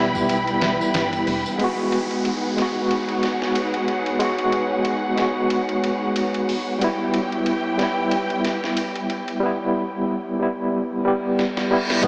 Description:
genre	trip hop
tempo	92 BPM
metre	4/4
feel	swing 56% on 16ths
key	G# minor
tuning	A4 = 440 Hz
part	overdriven tine electric piano	accompaniment	0.0-12.1 s	G3 to G4	-24 LUFS	equal	fast tremolo, low-pass filter, tape echo
part	warm symphonic string section	sustained chords	0.0-12.1 s	D#4 to B5	-29 LUFS	equal	low-pass filter
part	upright bass	bass	0.0-1.4, 12.0-12.1 s	E1 to B1	-36 LUFS	equal	none
part	trip hop sampler-style drum kit	drums	0.1-12.1 s	hi-hat, kick drum, ride cymbal, snare drum	-33 LUFS	equal	high-pass filter on hats, vintage 12-bit sampler grit, studio reverb, high-pass filter on cymbals, high-pass filter on kick, high-pass filter on snare
part	tambourine	percussion	0.1-1.6, 12.0-12.1 s	none	-43 LUFS	equal	none
part	downlifter and reverse cymbal	sound effects	1.6-6.8, 11.5-12.0 s	none	-35 LUFS	equal	none
part	wind-like tuned noise texture	texture	3.1-9.4 s	C#5	-37 LUFS	equal	built-in reverb
room	wet huge ambient reverb, RT60 8.2 s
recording	dreamy mix soaked in reverb, small speaker sound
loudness	-22 LUFS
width	mono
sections	0.0-1.6 A section; 1.6-12.0 B section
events	filter sweep on tine electric piano 1.6-12.0; drum fill 11.4-12.0; reverse cymbal 11.5-12.0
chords	0.0 Em; 1.6 G#m7; 6.8 Em

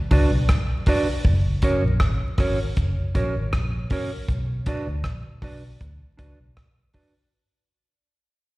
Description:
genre	roots reggae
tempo	79 BPM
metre	4/4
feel	straight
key	unclear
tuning	A4 = 441 Hz
part	mellow electric guitar	accompaniment	0.1-7.1 s	C#4 to D5	-27 LUFS	right 2 dB	vibrato effect, dub echo, plate reverb, slapback echo
part	vintage muted fingered electric bass	bass	0.1-6.5 s	F#1 to D2	-23 LUFS	equal	none
part	damped 70s drum kit	drums	0.1-7.1 s	hi-hat, kick drum, rim click	-23 LUFS	equal	none
room	little or no reverb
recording	live gig heard through the venue's PA, recital hall reverb, vinyl crackle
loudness	-20 LUFS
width	side -20 dB against mid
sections	0.0-1.2 A section; 1.2-7.3 B section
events	fade-out 1.2-7.3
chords	0.0 Bm; 1.2 F#; 4.3 Bm

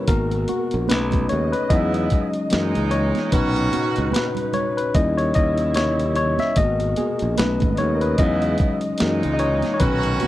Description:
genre	R&B, neo-soul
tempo	74 BPM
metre	4/4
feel	swing 57% on 16ths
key	B major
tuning	A4 = 439 Hz
part	mellow tine electric piano	accompaniment	0.0-10.3 s	A#2 to E5	-22 LUFS	left 3 dB	none
part	muted studio string section	sustained chords	0.0-10.3 s	B2 to D#5	-31 LUFS	right 5 dB	none
part	modern bright fingered electric bass	bass	0.1-10.3 s	G#1 to F#2	-23 LUFS	right 1 dB	none
part	boom bap sampler-style drum kit	drums	0.1-10.3 s	hi-hat, kick drum, snare drum	-22 LUFS	right 1 dB	none
part	congas	percussion	0.3-10.3 s	none	-31 LUFS	right 14 dB	none
part	clear horn section	stabs	1.7-10.3 s	A#2 to F#4	-27 LUFS	right 4 dB	none
room	little or no reverb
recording	dry, close 1970s-style studio recording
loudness	-18 LUFS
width	side -15 dB against mid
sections	0.0-10.3 A section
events	tine electric piano solo 0.0-10.3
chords	0.1 G#m9; 0.9 B9; 1.7 Emaj13; 2.5 F#13; 3.3 Bmaj9; 4.9 D#7b9; 6.6 G#m9; 7.4 B9; 8.2 Emaj13; 9.0 F#13

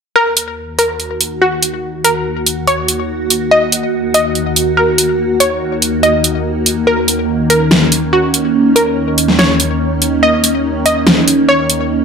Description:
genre	heavy wobble dubstep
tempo	143 BPM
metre	4/4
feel	half-time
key	Eb minor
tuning	A4 = 440 Hz
part	wide unison pluck	melody	0.2-12.0 s	Gb4 to Eb5	-14 LUFS	equal	ping-pong delay
part	evolving wavetable pad	sustained chords	0.6-12.0 s	Eb2 to Gb4	-15 LUFS	equal	ensemble chorus, built-in reverb, phaser
part	dubstep drum kit	drums	0.4-11.8 s	hi-hat, snare drum	-12 LUFS	equal	overdrive
room	moderate digital room reverb, RT60 1.3 s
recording	none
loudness	-11 LUFS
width	side -6 dB against mid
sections	0.2-12.0 A section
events	none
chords	0.2 Ebm

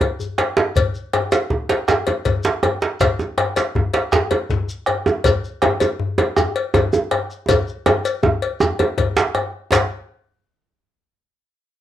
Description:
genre	west african traditional, West African drum ensemble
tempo	107 BPM (dotted quarters)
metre	12/8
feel	straight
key	none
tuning	none
part	bombo	percussion	0.0-9.9 s	none	-24 LUFS	right 1 dB	none
part	cowbell	percussion	0.0-9.9 s	none	-22 LUFS	left 6 dB	none
part	djembe	percussion	0.0-9.9 s	none	-24 LUFS	left 4 dB	none
part	djembe	percussion	0.0-9.9 s	none	-19 LUFS	right 3 dB	none
part	shekere	percussion	0.2-9.9 s	none	-27 LUFS	left 1 dB	none
room	moderate studio reverb, RT60 0.6 s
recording	rough home demo mix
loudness	-17 LUFS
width	side -11 dB against mid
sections	0.0-9.7 A section; 9.7-11.8 B section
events	drum fill 0.0-0.8, 7.5-9.7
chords	none

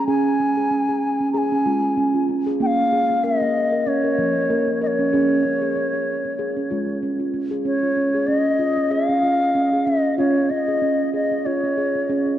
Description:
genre	world meditative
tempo	95 BPM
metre	4/4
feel	swing 56% on 16ths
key	Db major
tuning	A4 = 440 Hz
part	bright bass bansuri	melody	0.0-12.4 s	Db5 to Bb5	-22 LUFS	left 2 dB	none
part	steel tongue drum	arpeggios	0.0-12.4 s	F3 to Bb4	-20 LUFS	right 1 dB	none
room	wet cathedral reverb, RT60 5.1 s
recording	worn, warbling old tape, cassette tape, warbly pitch drift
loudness	-18 LUFS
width	side -11 dB against mid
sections	0.0-7.7 A section; 7.7-12.4 B section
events	none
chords	0.0 Db; 2.6 Bbm; 5.1 Db

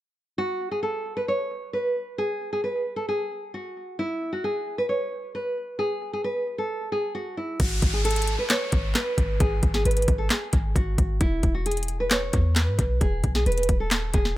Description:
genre	hip hop, trap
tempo	133 BPM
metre	4/4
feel	half-time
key	G# phrygian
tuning	A4 = 438 Hz
part	nylon-string guitar	melody	0.4-14.3 s	E4 to C#5	-27 LUFS	right 1 dB	low-pass filter, analog delay
part	clean 808-style bass	bass	7.6-14.4 s	D#1 to G#2	-25 LUFS	equal	none
part	trap drum kit	drums	7.6-14.4 s	crash cymbal, handclaps, hi-hat, kick drum, snare drum	-24 LUFS	equal	none
part	downlifter	sound effects	7.6-11.2 s	none	-34 LUFS	equal	none
room	digital ambience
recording	echo-heavy mix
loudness	-23 LUFS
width	side -15 dB against mid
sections	0.4-7.6 A section; 7.6-14.4 B section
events	none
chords	0.4 N.C.; 7.6 G#m; 11.2 E

